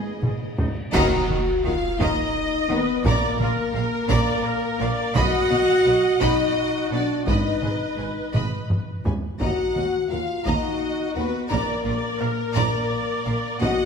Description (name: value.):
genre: cinematic, epic orchestral film score.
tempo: 57 BPM (dotted quarters).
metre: 6/8.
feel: straight.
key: Eb harmonic minor.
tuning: A4 = 440 Hz.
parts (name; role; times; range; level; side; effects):
rich symphonic violin section; melody; 0.0-13.9 s; Bb4 to Gb5; -30 LUFS; left 2 dB; none.
warm symphonic violin section; second line; 0.0-13.9 s; F4 to B5; -30 LUFS; left 2 dB; none.
clear symphonic viola section; accompaniment; 0.0-13.9 s; Eb4 to Eb5; -29 LUFS; right 2 dB; none.
mellow French horn section; sustained chords; 0.0-13.9 s; Bb3 to Gb4; -24 LUFS; left 2 dB; none.
clear symphonic double bass section; bass; 0.2-13.7 s; Ab1 to Eb2; -30 LUFS; right 3 dB; none.
rich symphonic cello section; bass; 0.2-13.7 s; Eb2 to Eb3; -30 LUFS; right 3 dB; none.
taiko ensemble; drums; 0.2-13.9 s; none; -27 LUFS; equal; none.
clash cymbals and concert bass drum; percussion; 0.9-2.3 s; none; -31 LUFS; equal; none.
room: wet concert hall reverb, RT60 2.0 s.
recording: none.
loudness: -20 LUFS.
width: side -6 dB against mid.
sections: 0.9-13.9 A section.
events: drum fill 0.0-0.9, 8.3-9.4; band accent 0.9-1.6.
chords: 0.0 Abm; 0.9 Ebm; 3.1 Bb; 5.2 B; 7.3 Abm; 9.4 Ebm; 11.5 Bb.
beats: | 0.94 2.00 | 3.05 4.10 | 5.16 6.21 | 7.28 8.34 | 9.40 10.46 | 11.51 12.55 | 13.61.